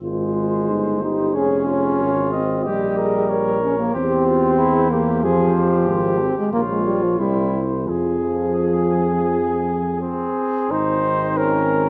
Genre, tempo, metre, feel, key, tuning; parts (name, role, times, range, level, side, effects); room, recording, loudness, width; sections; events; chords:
classical, brass quintet; 82-94 BPM; 4/4; rubato; F minor; A4 = 440 Hz
mellow trumpet; melody; 0.0-11.9 s; Ab4 to Eb5; -28 LUFS; equal
dark French horn; accompaniment; 0.0-11.9 s; Eb4 to Bb4; -28 LUFS; equal
warm trombone; accompaniment; 0.0-11.9 s; F3 to Eb4; -24 LUFS; equal
warm tuba; bass; 0.0-11.9 s; F1 to F2; -26 LUFS; equal
warm flugelhorn; second line; 1.3-11.9 s; C4 to Bb4; -26 LUFS; equal
moderate scoring stage reverb, RT60 2.0 s; worn, warbling old tape, cassette tape, warbly pitch drift; -20 LUFS; mono
0.0-10.7 A section; 10.7-11.9 B section
0.0 Ab; 1.3 Db/F; 2.7 Gdim/Bb; 4.0 C/E; 5.2 Fm; 6.5 Bbm; 7.2 C; 7.9 Fm; 10.7 Ab